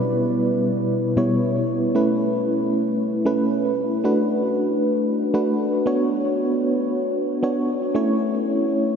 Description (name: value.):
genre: pop.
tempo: 115 BPM.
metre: 4/4.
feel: straight.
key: unclear.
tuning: A4 = 440 Hz.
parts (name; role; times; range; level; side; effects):
FM electric piano with tremolo; solo; 0.0-9.0 s; B2 to C#5; -19 LUFS; equal; diffuse ambient delay.
room: wet huge ambient reverb, RT60 8.8 s.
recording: dreamy mix soaked in reverb.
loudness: -19 LUFS.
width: side -6 dB against mid.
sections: 0.0-9.0 A section.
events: none.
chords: 0.0 Em/B; 2.0 Aadd9; 4.0 D6; 5.9 Bmadd9; 8.0 A.